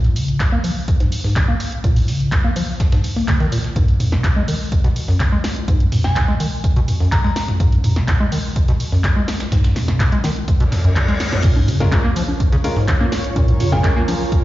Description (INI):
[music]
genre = acid house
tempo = 125 BPM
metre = 4/4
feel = straight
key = Bb phrygian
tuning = A4 = 440 Hz
[part]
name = deep acid bass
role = riff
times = 0.0-14.1 s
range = Gb2 to Bb3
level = -20 LUFS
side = equal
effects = overdrive, analog chorus, digital delay
[part]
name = breakbeat sampler-style drum kit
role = drums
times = 0.0-14.4 s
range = hi-hat, snare drum, tambourine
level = -36 LUFS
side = right 2 dB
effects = sidechain pumping on perc, high-pass filter on perc, small room ambience, sidechain pumping on hats, high-pass filter on hats, high-pass filter on snare
[part]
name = punchy analog drum machine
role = drums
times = 0.0-14.4 s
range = congas, crash cymbal, handclaps, hi-hat, snare drum, toms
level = -23 LUFS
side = equal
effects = small room ambience
[part]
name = electronic kick drum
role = drums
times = 0.4-14.4 s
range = none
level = -18 LUFS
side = equal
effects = small room ambience
[part]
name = glassy synth bell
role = melody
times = 6.0-7.3, 13.7-13.9 s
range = Ab5 to Bb5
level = -28 LUFS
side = right 1 dB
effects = chorus, tape echo
[part]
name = reverse cymbal and sub drop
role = sound effects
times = 10.6-13.4 s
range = none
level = -26 LUFS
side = left 1 dB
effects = none
[part]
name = granular cloud pad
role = texture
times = 12.1-14.4 s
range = F4 to Ab5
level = -25 LUFS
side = right 1 dB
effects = built-in reverb, sidechain pumping
[part]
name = warm grand piano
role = stabs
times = 11.8-13.9 s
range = Ab3 to Bb4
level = -26 LUFS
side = left 2 dB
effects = digital delay
[sound]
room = light reverb, digital ambience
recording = played on a big sound system in a bare room, large studio reverb, nothing above 7.5 kHz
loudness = -15 LUFS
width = side -16 dB against mid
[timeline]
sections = 0.0-11.4 A section; 11.4-14.4 B section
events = filter sweep on acid bass 0.0-11.4; reverse cymbal 10.6-11.4; drop 11.4-14.4; impact 11.4-13.4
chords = 0.0 Bbm7; 3.8 Abm7; 11.4 Bbm7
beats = 0.40 0.88 1.36 | 1.84 2.32 2.80 3.28 | 3.76 4.24 4.72 5.20 | 5.68 6.16 6.64 7.12 | 7.60 8.08 8.56 9.04 | 9.52 10.00 10.48 10.96 | 11.44 11.92 12.40 12.88 | 13.36 13.84 14.32